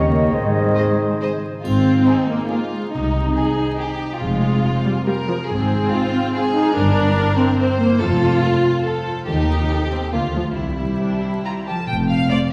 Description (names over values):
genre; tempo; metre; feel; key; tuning
cinematic, playful, whimsical film cue; 141 BPM; 3/4; straight; Ab major, F major from 6.8 s; A4 = 439 Hz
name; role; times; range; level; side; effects
clear clarinet; second line; 0.0-1.4 s; G4 to Ab4; -32 LUFS; equal; none
hollow concert flute; second line; 0.0-1.4 s; Eb5; -30 LUFS; equal; none
mellow cor anglais; second line; 0.0-1.4 s; C5 to Db5; -30 LUFS; equal; none
clear bassoon; accompaniment; 0.0-1.4 s; Eb3; -28 LUFS; equal; none
dark French horn section; sustained chords; 0.0-1.4 s; G4 to Db5; -28 LUFS; equal; none
concert harp; arpeggios; 0.0-12.5 s; F2 to C6; -29 LUFS; equal; none
warm chamber double bass section; bass; 0.0-12.2 s; F1 to Eb2; -25 LUFS; equal; none
warm chamber cello section; bass; 0.1-12.2 s; C2 to Bb3; -29 LUFS; equal; none
warm studio violin section; melody; 0.8-12.4 s; D4 to Bb5; -33 LUFS; equal; none
rich chamber violin section; second line; 0.8-12.4 s; Eb4 to C5; -28 LUFS; equal; none
warm chamber viola section; accompaniment; 0.8-12.4 s; F3 to Ab4; -23 LUFS; equal; none
triangle; percussion; 1.6-2.5 s; none; -50 LUFS; equal; none
room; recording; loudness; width
wet scoring stage reverb, RT60 1.6 s; heard from further back in the room, vinyl crackle; -19 LUFS; mono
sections
0.0-1.7 A section; 1.7-11.9 A section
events
none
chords
0.3 Ab; 2.9 Ab/C; 4.2 Fm; 5.5 Fm/Ab; 6.8 C7/G; 8.0 F; 9.3 F7/Eb; 10.1 Bb/D; 10.6 C; 11.9 F